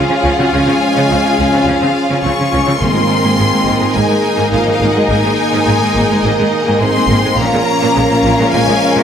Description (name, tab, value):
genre	cinematic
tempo	105 BPM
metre	4/4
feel	straight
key	Ab major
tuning	A4 = 440 Hz
part	clear symphonic violin section	melody	0.0-9.0 s	Eb5 to Db6	-18 LUFS	left 4 dB	none
part	rich symphonic violin section	second line	0.0-9.0 s	F4 to F5	-19 LUFS	left 2 dB	none
part	clear symphonic viola section	accompaniment	0.0-9.0 s	Ab3 to F4	-20 LUFS	right 1 dB	none
part	clear symphonic string section	sustained chords	0.0-9.0 s	Bb3 to F5	-20 LUFS	equal	none
part	mellow French horn section	sustained chords	0.0-9.0 s	Eb3 to Db4	-20 LUFS	left 2 dB	none
part	warm trombone section	sustained chords	0.0-9.0 s	Eb3 to Db4	-20 LUFS	right 3 dB	none
part	clear symphonic cello section	bass	0.1-9.0 s	Ab2 to Db3	-20 LUFS	right 1 dB	none
part	rich symphonic double bass section	bass	0.2-8.6 s	Ab1 to Db2	-20 LUFS	right 2 dB	none
part	timpani	percussion	2.8-3.6 s	Ab2	-21 LUFS	equal	none
room	wet scoring stage reverb, RT60 1.4 s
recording	none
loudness	-10 LUFS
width	side -8 dB against mid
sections	0.0-9.0 A section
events	none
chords	0.0 Db; 2.8 Abadd9; 7.4 Bbm